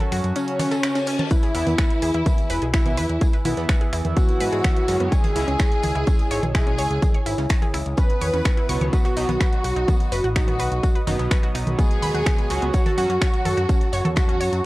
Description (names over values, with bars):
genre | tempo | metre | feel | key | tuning
melodic techno | 126 BPM | 4/4 | straight | C# minor | A4 = 440 Hz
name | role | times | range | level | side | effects
dark analog pad | sustained chords | 0.0-14.7 s | E4 to E6 | -34 LUFS | equal | chorus, phaser, sidechain pumping
wide unison pluck | arpeggios | 0.0-14.5 s | B3 to C#6 | -30 LUFS | equal | sidechain pumping, tape echo
sync-sweep polysynth | stabs | 0.0-5.5, 8.7-13.1 s | B2 to F#4 | -30 LUFS | right 2 dB | chorus, sidechain pumping, tape echo
house drum kit | drums | 0.0-14.6 s | congas, finger snaps, hi-hat | -29 LUFS | right 1 dB | overdrive, sidechain pumping on hats, sidechain pumping on perc
fat analog bass | bass | 0.1-14.6 s | E1 to G#2 | -25 LUFS | equal | tube saturation, sidechain pumping
soft brush drum kit | drums | 0.1-14.6 s | hi-hat, snare drum, tambourine | -41 LUFS | equal | none
fat analog lead | melody | 0.4-14.7 s | C#4 to B4 | -26 LUFS | equal | chorus, sidechain pumping, tape echo
warm symphonic violin section | second line | 0.4-14.7 s | C#4 to B4 | -32 LUFS | equal | sidechain pumping, tape echo
reverse cymbal | sound effects | 0.7-1.3 s | none | -34 LUFS | left 5 dB | none
electronic kick drum | drums | 1.3-14.3 s | none | -20 LUFS | equal | overdrive
room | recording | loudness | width
digital ambience | dry, gritty hardware recording, cassette tape | -18 LUFS | side -18 dB against mid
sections
0.0-14.7 A section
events
reverse cymbal 0.7-1.3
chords
0.0 F#m; 1.3 E; 5.1 C#m; 8.9 B; 12.7 F#m